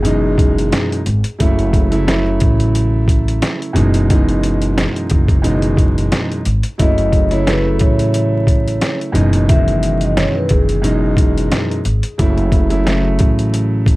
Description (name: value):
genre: hip hop, boom-bap hip-hop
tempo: 89 BPM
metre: 4/4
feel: swing 55% on 16ths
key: F# dorian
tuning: A4 = 440 Hz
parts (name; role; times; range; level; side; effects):
- vibraphone with soft mallets; melody; 0.0-0.9, 6.8-11.7 s; G#4 to E5; -22 LUFS; left 1 dB; plate reverb, tape echo
- dark concert grand piano; accompaniment; 0.0-14.0 s; F#2 to E4; -17 LUFS; right 1 dB; cassette tape
- upright bass; bass; 0.0-14.0 s; F#1 to A1; -17 LUFS; equal; none
- boom bap sampler-style drum kit; drums; 0.1-14.0 s; hi-hat, kick drum, snare drum; -16 LUFS; equal; none
room: light reverb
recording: dark, warm production, vinyl crackle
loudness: -12 LUFS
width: side -20 dB against mid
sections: 0.0-14.0 A section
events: none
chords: 0.0 Emaj7/F#; 1.4 F#m7; 3.8 Emaj7/F#; 6.8 F#m7; 9.2 Emaj7/F#; 12.2 F#m7